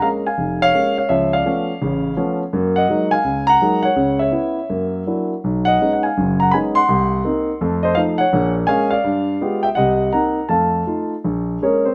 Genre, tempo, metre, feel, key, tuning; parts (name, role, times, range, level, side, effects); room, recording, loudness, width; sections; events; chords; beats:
solo jazz; 166 BPM; 4/4; swing 66% on 8ths, rubato; Bb minor; A4 = 439 Hz
dark concert grand piano; solo; 0.0-11.9 s; F1 to C6; -18 LUFS; equal
moderate studio reverb, RT60 0.8 s; -18 LUFS; mono
0.0-11.3 A section
0.0 Bbm7; 1.1 Dbaug7; 2.5 Gb69; 4.0 Dbm7; 4.7 Gbaug7; 5.4 B69; 6.9 Cm7b5; 7.6 F7; 8.3 Bbm7; 9.1 G7b9; 9.8 Cm7b5; 10.5 F7; 11.3 Bbm7
0.02 0.38 0.74 | 1.10 1.46 1.82 2.18 | 2.54 2.89 3.25 3.61 | 3.97 4.33 4.70 5.07 | 5.44 5.81 6.17 6.54 | 6.90 7.26 7.62 7.97 | 8.33 8.69 9.05 9.41 | 9.77 10.13 10.50 10.88 | 11.25 11.62